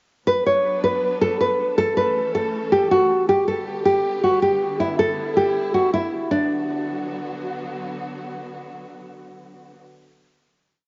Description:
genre	hip hop, trap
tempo	159 BPM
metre	4/4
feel	half-time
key	B minor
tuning	A4 = 443 Hz
part	nylon-string guitar	melody	0.3-7.4 s	D4 to C#5	-21 LUFS	equal	cassette tape, plate reverb, analog delay
part	warm symphonic string section	sustained chords	0.3-9.8 s	D3 to B4	-34 LUFS	equal	plate reverb
room	moderate small room reverb, RT60 0.6 s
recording	home recording on cassette, nothing above 7.5 kHz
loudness	-21 LUFS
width	mono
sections	0.3-6.3 breakdown; 6.3-9.3 final chord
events	none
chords	0.3 Bm; 1.8 A; 3.3 G; 4.8 Em7; 6.3 Bm

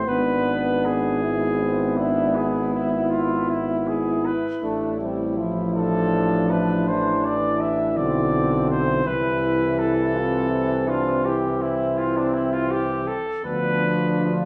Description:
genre	classical, hymn-like piece for brass band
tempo	54 BPM (dotted quarters)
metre	12/8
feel	rubato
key	A minor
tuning	A4 = 441 Hz
part	warm flugelhorn	melody	0.0-14.3 s	D4 to E5	-27 LUFS	equal	none
part	dark French horn section	second line	0.0-14.5 s	C4 to E4	-30 LUFS	equal	none
part	bright trombone	accompaniment	0.0-14.5 s	D3 to B3	-29 LUFS	equal	none
part	clear trombone section	accompaniment	0.0-14.5 s	B3 to F4	-30 LUFS	equal	none
part	warm tuba	bass	0.0-14.5 s	G#1 to D2	-29 LUFS	equal	none
room	wet recital hall reverb, RT60 1.4 s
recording	recorded in a church or concert hall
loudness	-22 LUFS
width	mono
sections	0.0-14.5 A section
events	none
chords	0.1 E7/G#; 4.6 Am; 9.1 Am/C; 13.5 Bdim/D

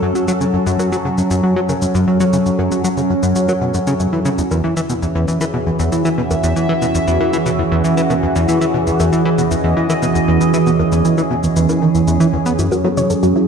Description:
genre	ambient, sequencer-driven space music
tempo	117 BPM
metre	4/4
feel	straight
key	unclear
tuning	A4 = 440 Hz
part	phased analog pad	sustained chords	0.0-13.5 s	E3 to E5	-16 LUFS	right 1 dB	phaser, chorus
part	plucky analog bass	riff	0.0-13.5 s	E2 to B3	-17 LUFS	equal	vintage 12-bit sampler grit, tape echo
part	shaker and bongos	percussion	0.2-13.3 s	none	-30 LUFS	left 1 dB	tape echo
part	soft round pluck	arpeggios	12.6-13.5 s	E4 to C#5	-21 LUFS	equal	chorus, auto-pan, tape echo
room	wet concert hall reverb, RT60 1.9 s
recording	none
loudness	-13 LUFS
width	side -6 dB against mid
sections	0.0-13.5 A section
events	none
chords	0.0 F#m7; 4.4 E6; 12.6 F#m7

